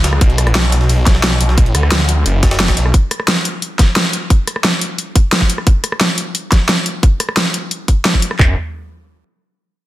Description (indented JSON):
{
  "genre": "dark technical drum and bass",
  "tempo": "176 BPM",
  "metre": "4/4",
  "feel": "straight",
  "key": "unclear",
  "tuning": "A4 = 440 Hz",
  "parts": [
    { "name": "snarling distorted saw bass", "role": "bass", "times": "0.0-2.9, 8.4-8.6 s", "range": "F#1 to D2", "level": "-14 LUFS", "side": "equal", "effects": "sidechain pumping" },
    { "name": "dubstep drum kit", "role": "drums", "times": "0.0-8.4 s", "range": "hi-hat, rim click, snare drum", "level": "-16 LUFS", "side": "equal", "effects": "none" },
    { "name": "jungle sampler-style drum kit", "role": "drums", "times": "0.0-2.9 s", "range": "hi-hat, snare drum", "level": "-24 LUFS", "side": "equal", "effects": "high-pass filter on hats, high-pass filter on snare" },
    { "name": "drum and bass drum kit", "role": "drums", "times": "0.2-8.5 s", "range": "handclaps, kick drum, toms", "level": "-11 LUFS", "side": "equal", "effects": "none" }
  ],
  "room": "light reverb",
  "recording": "dense, heavily limited modern master",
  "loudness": "-12 LUFS",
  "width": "side -15 dB against mid",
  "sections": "0.0-8.4 A section; 8.4-9.8 B section",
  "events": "none",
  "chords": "none",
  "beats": "| 0.21 0.55 0.89 1.24 | 1.58 1.92 2.26 2.60 | 2.94 3.28 3.62 3.96 | 4.30 4.64 4.99 5.33 | 5.67 6.01 6.35 6.69 | 7.03 7.37 7.71 8.05 | 8.39"
}